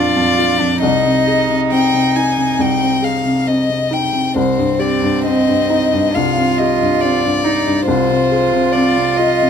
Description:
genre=neoclassical piano and strings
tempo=68 BPM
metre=4/4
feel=rubato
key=C minor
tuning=A4 = 441 Hz
part: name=warm violin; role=melody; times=0.0-9.5 s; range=C5 to Ab5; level=-17 LUFS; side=left 5 dB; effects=none
part: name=rich cello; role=second line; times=0.0-9.5 s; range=C4 to F4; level=-19 LUFS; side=right 8 dB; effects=none
part: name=felt-muted upright piano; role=accompaniment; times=0.0-9.5 s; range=Bb1 to Bb4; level=-16 LUFS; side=left 1 dB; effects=none
room=light reverb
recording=close, detailed microphones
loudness=-13 LUFS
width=side -7 dB against mid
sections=0.0-9.5 A section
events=none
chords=0.0 Bb; 0.8 Ab/C; 4.4 Cm; 7.9 Fm/C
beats=| 0.82 1.71 2.59 3.48 | 4.37 5.25 6.14 7.01 | 7.87 8.72

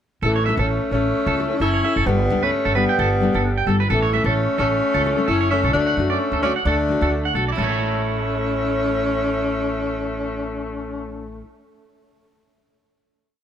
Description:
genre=highlife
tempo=131 BPM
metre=4/4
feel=swing 55% on 16ths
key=A mixolydian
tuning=A4 = 440 Hz
part: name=nylon-string guitar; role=accompaniment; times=0.2-11.5 s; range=E3 to A4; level=-28 LUFS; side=left 5 dB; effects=none
part: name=electric guitar at the edge of break-up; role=arpeggios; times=0.2-11.5 s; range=E4 to G5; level=-25 LUFS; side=right 3 dB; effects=slapback echo
part: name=upright bass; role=bass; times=0.2-11.4 s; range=F#1 to F#2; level=-24 LUFS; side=right 1 dB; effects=none
part: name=dark tenor saxophone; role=melody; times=0.3-11.4 s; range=A3 to E4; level=-22 LUFS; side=left 1 dB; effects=none
part: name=growling alto saxophone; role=second line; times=0.3-11.4 s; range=E3 to C#4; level=-28 LUFS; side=left 3 dB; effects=none
room=light reverb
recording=none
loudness=-18 LUFS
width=side -9 dB against mid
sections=0.2-7.6 A section; 7.6-11.3 final chord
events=none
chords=0.2 A; 2.1 Gadd9; 3.9 A; 5.7 D; 7.6 A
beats=| 0.23 0.69 1.15 1.61 | 2.07 2.53 2.99 3.45 | 3.90 4.36 4.82 5.28 | 5.74 6.20 6.66 7.12 | 7.58 8.03 8.49 8.95 | 9.41 9.88 10.34 10.80

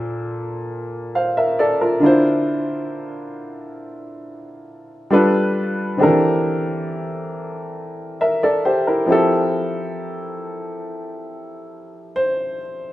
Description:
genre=R&B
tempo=68 BPM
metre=4/4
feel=straight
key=F major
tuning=A4 = 439 Hz
part: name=warm baby grand piano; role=solo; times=0.0-12.9 s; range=Bb2 to F5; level=-18 LUFS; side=equal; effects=none
room=light reverb, studio ambience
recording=rough home demo mix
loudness=-17 LUFS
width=side -15 dB against mid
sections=0.0-12.9 A section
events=none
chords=0.0 Bbmaj7; 2.0 Dm9; 5.1 G9; 6.0 C13/E; 9.1 Fmaj7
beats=0.70 1.58 | 2.46 3.34 4.23 5.11 | 5.99 6.87 7.75 8.64 | 9.52 10.40 11.29 12.17

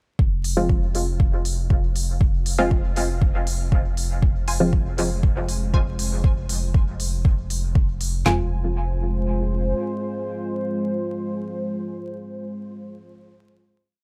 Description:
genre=dub techno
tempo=119 BPM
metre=4/4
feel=straight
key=F minor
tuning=A4 = 441 Hz
part: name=pure sine sub bass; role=bass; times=0.2-9.7 s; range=F1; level=-27 LUFS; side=equal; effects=tube saturation, sidechain pumping
part: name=deep house drum kit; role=drums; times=0.2-8.4 s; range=handclaps, kick drum, snare drum, toms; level=-22 LUFS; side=equal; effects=none
part: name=electronic hi-hat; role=drums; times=0.4-8.1 s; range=none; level=-33 LUFS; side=equal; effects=none
part: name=filtered dub chord stab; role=stabs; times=0.6-4.8, 8.3-12.4 s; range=F3 to F4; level=-29 LUFS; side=equal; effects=chorus, phaser, cassette tape, sidechain pumping, dub echo
part: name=deep dark ambient pad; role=sustained chords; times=5.1-12.4 s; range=Ab3 to C5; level=-32 LUFS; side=equal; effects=chorus, built-in reverb, sidechain pumping
part: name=filtered dub chord stab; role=riff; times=4.5-12.4 s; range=F4 to Ab5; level=-35 LUFS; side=equal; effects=phaser, subtle chorus, sidechain pumping, dub echo
room=little or no reverb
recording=vinyl crackle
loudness=-23 LUFS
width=mono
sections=0.2-8.3 groove; 8.3-12.3 final chord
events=none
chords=0.2 Fm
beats=| 0.19 0.69 1.20 1.70 | 2.21 2.71 3.22 3.72 | 4.22 4.73 5.23 5.74 | 6.24 6.75 7.25 7.75 | 8.26 8.76 9.27 9.77 | 10.28 10.78 11.28 11.79

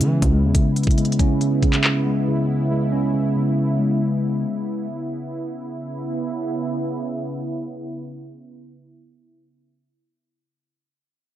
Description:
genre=hip hop, drill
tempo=139 BPM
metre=4/4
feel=half-time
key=C# minor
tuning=A4 = 440 Hz
part: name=mellow tine electric piano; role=accompaniment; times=0.0-4.9 s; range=C#3 to C#4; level=-20 LUFS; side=equal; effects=phaser
part: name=warm analog pad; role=sustained chords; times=0.0-9.5 s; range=C#3 to E4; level=-27 LUFS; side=right 2 dB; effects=chorus
part: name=hard-hitting 808-style bass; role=bass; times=0.0-0.5 s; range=C#2 to E3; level=-20 LUFS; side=equal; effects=none
part: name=drill drum kit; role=drums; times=0.0-1.9 s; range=handclaps, hi-hat, kick drum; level=-19 LUFS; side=equal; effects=overdrive
room=little or no reverb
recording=dry, gritty hardware recording, low-pass filter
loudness=-19 LUFS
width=side -12 dB against mid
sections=0.0-5.7 A section; 5.7-9.2 B section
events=filter sweep 0.0-5.7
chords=0.0 C#m7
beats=0.11 | 0.55 0.98 1.41 1.84 | 2.27 2.70 3.14 3.57 | 4.00 4.43 4.86 5.29 | 5.73 6.16 6.59 7.02 | 7.45 7.88 8.32 8.75

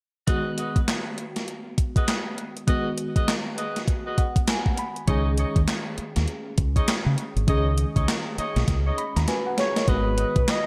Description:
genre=R&B, new jack swing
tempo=100 BPM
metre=4/4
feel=swing 62% on 16ths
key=G# minor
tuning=A4 = 440 Hz
part: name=mellow FM electric piano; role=accompaniment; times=0.3-10.7 s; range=D#3 to B5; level=-33 LUFS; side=equal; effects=chorus, tremolo
part: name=dark horn section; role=stabs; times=0.3-10.4 s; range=D#4 to D#5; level=-34 LUFS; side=equal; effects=digital delay
part: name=gated 80s digital drum machine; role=drums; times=0.3-10.7 s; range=handclaps, hi-hat, kick drum, snare drum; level=-27 LUFS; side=equal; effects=gated reverb, gated reverb snare, overdrive
part: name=deep dub fingered electric bass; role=bass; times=5.1-10.4 s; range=G#1 to C#3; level=-26 LUFS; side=equal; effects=none
part: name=expressive portamento lead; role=melody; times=9.6-10.7 s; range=B4 to D#5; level=-28 LUFS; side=equal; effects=chorus
room=light reverb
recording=bright 1980s-style digital production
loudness=-25 LUFS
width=mono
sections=0.3-9.9 A section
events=FM electric piano fill 3.9-5.1, 8.7-9.9; drum fill 8.7-9.9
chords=0.3 G#m7; 5.1 C#sus2; 9.9 G#m7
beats=| 0.28 0.88 1.48 2.08 | 2.68 3.28 3.88 4.48 | 5.08 5.68 6.28 6.88 | 7.48 8.08 8.68 9.28 | 9.88 10.48

